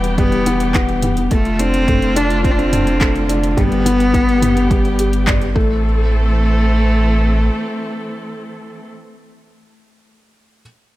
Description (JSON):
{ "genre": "piano and strings electronica", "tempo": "106 BPM", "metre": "4/4", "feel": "straight", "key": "A minor", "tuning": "A4 = 440 Hz", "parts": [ { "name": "warm studio string section", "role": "sustained chords", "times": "0.0-8.9 s", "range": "D3 to A4", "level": "-25 LUFS", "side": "left 1 dB", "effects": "none" }, { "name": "felt-muted upright piano", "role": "riff", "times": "0.0-10.6 s", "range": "G3 to D5", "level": "-20 LUFS", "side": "left 2 dB", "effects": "tape echo" }, { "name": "warm sub bass", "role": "bass", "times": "0.0-7.5 s", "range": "E1 to A1", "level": "-18 LUFS", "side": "equal", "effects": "sidechain pumping" }, { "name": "deep house drum kit", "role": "drums", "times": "0.0-5.5 s", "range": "handclaps, hi-hat, toms", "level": "-23 LUFS", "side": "right 1 dB", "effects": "overdrive" }, { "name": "warm cello", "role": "melody", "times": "0.2-8.9 s", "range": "A3 to D4", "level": "-20 LUFS", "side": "equal", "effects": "none" }, { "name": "electronic kick drum", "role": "drums", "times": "0.2-5.7 s", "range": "none", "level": "-18 LUFS", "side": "equal", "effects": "overdrive" } ], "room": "little or no reverb", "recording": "none", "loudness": "-13 LUFS", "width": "side -16 dB against mid", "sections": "0.0-5.8 A section; 5.8-8.1 B section", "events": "drop 0.0-5.8", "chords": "0.0 Em; 1.3 Dm/F; 3.6 G; 5.6 Am" }